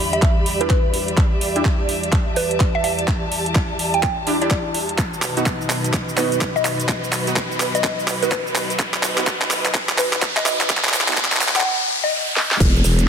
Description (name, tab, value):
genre	bass house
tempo	126 BPM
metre	4/4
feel	swing 62% on 16ths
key	unclear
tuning	A4 = 445 Hz
part	dark analog pad	sustained chords	0.0-13.1 s	B2 to G4	-30 LUFS	left 1 dB	chorus, sidechain pumping
part	riser and downlifter	sound effects	2.0-13.1 s	none	-27 LUFS	left 1 dB	none
part	dark studio string section	texture	0.0-11.7 s	F#4 to B5	-27 LUFS	equal	sidechain pumping
part	mallet-like synth pluck	melody	0.1-12.5 s	B4 to G5	-24 LUFS	right 1 dB	chorus, phaser, tape echo
part	garage drum kit	drums	0.1-13.1 s	crash cymbal, handclaps, hi-hat, shaker, snare drum	-22 LUFS	right 1 dB	soft clipping on snare
part	electronic kick drum	drums	0.2-12.7 s	none	-20 LUFS	equal	overdrive
part	orchestra-hit-like synth stab	stabs	0.6-11.2 s	B3 to G4	-27 LUFS	right 1 dB	built-in reverb, sidechain pumping, tape echo
part	vowel-sweep wobble bass	bass	12.6-13.1 s	E1	-16 LUFS	equal	chorus, sidechain pumping
room	moderate lush hall reverb, RT60 1.7 s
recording	dense, heavily limited modern master, high-pass filter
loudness	-17 LUFS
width	side -7 dB against mid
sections	0.0-12.6 A section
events	build-up 0.0-12.6; drum fill 0.0-11.7, 12.4; filter sweep on analog synth pad 0.0-12.6; filter sweep 0.0-12.6; riser 2.0-12.6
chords	0.0 Em7; 5.0 B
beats	0.22 0.70 | 1.18 1.65 2.13 2.60 | 3.08 3.56 4.03 4.51 | 4.99 5.46 5.94 6.41 | 6.89 7.37 7.84 8.32 | 8.79 9.27 9.75 10.22 | 10.70 11.18 11.65 12.13 | 12.60 13.08